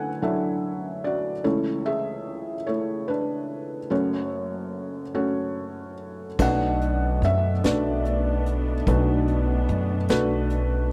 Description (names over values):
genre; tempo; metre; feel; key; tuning
folk; 49 BPM (dotted quarters); 6/8; straight; unclear; A4 = 440 Hz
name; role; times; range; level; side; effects
felt-muted upright piano; melody; 0.0-10.9 s; F#1 to G#5; -27 LUFS; equal; slapback echo
muted studio string section; sustained chords; 6.4-10.9 s; A3 to D4; -35 LUFS; equal; none
upright bass; bass; 6.4-10.9 s; B1 to F#2; -26 LUFS; equal; none
soft brush drum kit; drums; 6.4-10.7 s; crash cymbal, hi-hat, kick drum, snare drum; -29 LUFS; equal; none
room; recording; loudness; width
little or no reverb; dry, close 1970s-style studio recording; -25 LUFS; mono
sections
0.0-6.4 A section; 6.4-10.9 B section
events
none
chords
0.0 Dadd9; 1.5 A/C#; 3.9 F#m; 6.4 Bm7